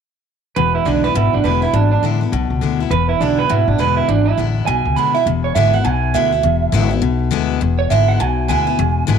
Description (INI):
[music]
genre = rockabilly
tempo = 204 BPM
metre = 4/4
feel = swing 62% on 8ths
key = E mixolydian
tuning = A4 = 442 Hz
[part]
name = electric guitar through a small old amp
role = melody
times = 0.6-9.2 s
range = D4 to B5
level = -18 LUFS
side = right 11 dB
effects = tape echo
[part]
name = picked steel-string acoustic guitar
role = accompaniment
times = 0.6-9.2 s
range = E2 to E4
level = -20 LUFS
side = left 13 dB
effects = none
[part]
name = upright bass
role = bass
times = 0.6-9.2 s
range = E1 to D2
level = -18 LUFS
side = left 1 dB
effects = none
[sound]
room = light reverb, small room ambience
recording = 1960s-style stereo with parts hard left and right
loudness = -14 LUFS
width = side -7 dB against mid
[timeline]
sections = 0.6-5.3 A section; 5.3-9.2 B section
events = none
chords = 0.6 E7